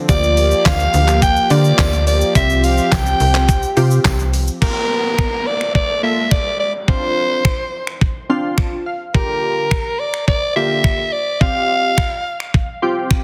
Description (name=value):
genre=dance-pop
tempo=106 BPM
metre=4/4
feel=straight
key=G dorian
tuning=A4 = 440 Hz
part: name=soft supersaw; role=sustained chords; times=0.0-4.6 s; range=F3 to G4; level=-25 LUFS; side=equal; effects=sidechain pumping
part: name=raspy soprano saxophone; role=melody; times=0.1-12.5 s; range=Bb4 to G5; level=-20 LUFS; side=equal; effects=tape echo
part: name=glassy digital keys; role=accompaniment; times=0.1-13.2 s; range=D3 to C6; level=-24 LUFS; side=equal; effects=chorus, sidechain pumping
part: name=slap-like FM bass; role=bass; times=0.1-4.5 s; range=C2 to D3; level=-18 LUFS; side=equal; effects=sidechain pumping
part: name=detuned 8-bit digital drum machine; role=drums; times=0.1-13.2 s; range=crash cymbal, finger snaps, handclaps, hi-hat, kick drum, shaker, snare drum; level=-19 LUFS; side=equal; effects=none
part: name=tambourine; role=percussion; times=0.1-4.5 s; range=none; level=-40 LUFS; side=equal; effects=none
part: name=downlifter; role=sound effects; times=4.6-9.1 s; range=none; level=-31 LUFS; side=equal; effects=none
room=light reverb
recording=heavily compressed radio sound, multiband compression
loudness=-16 LUFS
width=mono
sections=0.0-4.6 A section; 4.6-13.2 B section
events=synth keys fill 8.0-9.1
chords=0.1 Gm7/D; 2.4 Csus4; 4.6 Gm7; 6.9 Dm7; 9.1 Gm7/D; 11.4 Csus4